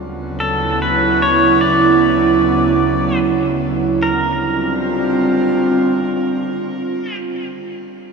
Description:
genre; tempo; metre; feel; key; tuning
ambient; 75 BPM; 3/4; straight; unclear; A4 = 441 Hz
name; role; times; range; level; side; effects
airy breathy pad; sustained chords; 0.0-7.2 s; D2 to F4; -16 LUFS; right 3 dB; chorus, shimmer reverb
pedal steel guitar; melody; 0.4-7.2 s; A4 to D5; -19 LUFS; left 2 dB; shimmer reverb, tape echo
room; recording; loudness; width
wet cathedral reverb, RT60 5.4 s; small room ambience; -14 LUFS; side -4 dB against mid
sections
0.0-4.0 A section; 4.0-6.4 B section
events
none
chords
0.0 Dmaj7; 4.0 Bb

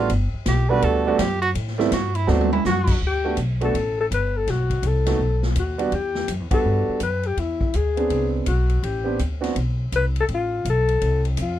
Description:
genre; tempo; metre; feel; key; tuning
jazz, small-group swing and bop; 165 BPM; 4/4; swing 64% on 8ths; G major; A4 = 440 Hz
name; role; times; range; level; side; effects
warm tenor saxophone; second line; 0.0-2.9 s; D4 to B4; -25 LUFS; right 4 dB; none
warm upright piano; accompaniment; 0.0-9.5 s; F#3 to G#4; -23 LUFS; right 6 dB; none
upright bass; bass; 0.0-11.6 s; G1 to A2; -23 LUFS; equal; none
swinging big-band drum kit; drums; 0.1-11.5 s; crash cymbal, hi-hat, kick drum, ride cymbal, snare drum, toms; -29 LUFS; left 1 dB; none
breathy alto saxophone; melody; 2.7-11.6 s; E4 to B4; -24 LUFS; left 4 dB; none
room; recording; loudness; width
little or no reverb; none; -19 LUFS; side -12 dB against mid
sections
0.0-3.0 A section; 3.0-11.6 B section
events
tenor saxophone solo 0.0-3.0; drum fill 2.3-2.6; band accent 6.5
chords
0.1 Gmaj9; 1.6 Am7; 2.3 D6; 3.0 Gmaj9; 4.5 B7; 5.9 Em9; 7.4 E7b13; 8.8 Am11; 10.3 F

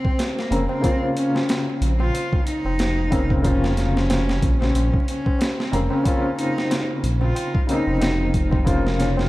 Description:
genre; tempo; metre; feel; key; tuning
trip hop; 92 BPM; 4/4; swing 57% on 16ths; Bb minor; A4 = 441 Hz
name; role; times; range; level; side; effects
warm cello; melody; 0.0-8.6 s; Bb3 to F4; -26 LUFS; equal; dub echo
felt-muted upright piano; accompaniment; 0.0-9.3 s; Db3 to C5; -25 LUFS; left 1 dB; tremolo, vintage 12-bit sampler grit, low-pass filter, analog delay
boom bap sampler-style drum kit; drums; 0.0-9.3 s; hi-hat, kick drum, snare drum; -24 LUFS; equal; overdrive, analog delay
tabla; percussion; 0.0-9.3 s; none; -33 LUFS; equal; analog delay
dark detuned saw bass; bass; 0.5-9.3 s; F1 to Bb1; -22 LUFS; equal; none
nylon-string guitar; arpeggios; 8.7-9.2 s; Bb3 to Db4; -29 LUFS; right 1 dB; vintage 12-bit sampler grit, analog delay
room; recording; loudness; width
studio ambience; echo-heavy mix, vinyl crackle; -18 LUFS; side -18 dB against mid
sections
0.0-9.3 A section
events
filter sweep on felt piano 0.0-9.3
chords
0.0 Bbmadd9

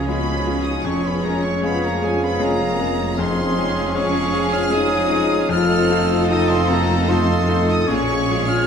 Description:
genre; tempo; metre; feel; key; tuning
classical, romantic movement for piano and orchestra; 77 BPM; 3/4; rubato; Db major from 3.2 s; A4 = 443 Hz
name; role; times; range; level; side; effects
clear chamber violin section; melody; 0.0-8.7 s; G#5 to F6; -28 LUFS; left 2 dB; none
clear grand piano; melody; 0.0-8.7 s; C#2 to G#4; -23 LUFS; left 3 dB; none
clear oboe; second line; 0.0-8.7 s; C#5 to F5; -31 LUFS; right 4 dB; none
rich chamber violin section; second line; 0.0-8.7 s; G#4 to F5; -32 LUFS; left 2 dB; none
mellow bassoon; accompaniment; 0.0-8.4 s; C4 to E#4; -29 LUFS; right 2 dB; none
rich chamber viola section; accompaniment; 0.0-8.7 s; C4 to E#4; -28 LUFS; equal; none
bright trombone section; sustained chords; 0.0-8.7 s; E#3 to Eb4; -30 LUFS; right 4 dB; none
bright trumpet; stabs; 0.0-8.7 s; Ab4 to A4; -27 LUFS; right 3 dB; none
dark chamber cello section; bass; 0.0-8.7 s; E#2 to C#3; -27 LUFS; right 2 dB; none
rich chamber double bass section; bass; 0.0-8.7 s; E#1 to C#2; -27 LUFS; right 2 dB; none
clear clarinet; second line; 0.1-8.7 s; F#4 to A4; -29 LUFS; left 1 dB; none
concert flute; second line; 0.1-8.7 s; G#5 to F6; -28 LUFS; equal; none
dark French horn section; sustained chords; 0.1-8.7 s; G#3 to F4; -25 LUFS; left 4 dB; none
room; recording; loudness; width
wet recital hall reverb, RT60 1.7 s; minimal, uncompressed stereo recording; -16 LUFS; side -7 dB against mid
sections
0.0-8.7 A section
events
none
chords
0.0 C#; 0.8 C#/E#; 3.2 Db/F; 5.5 F7; 7.9 Bbm7

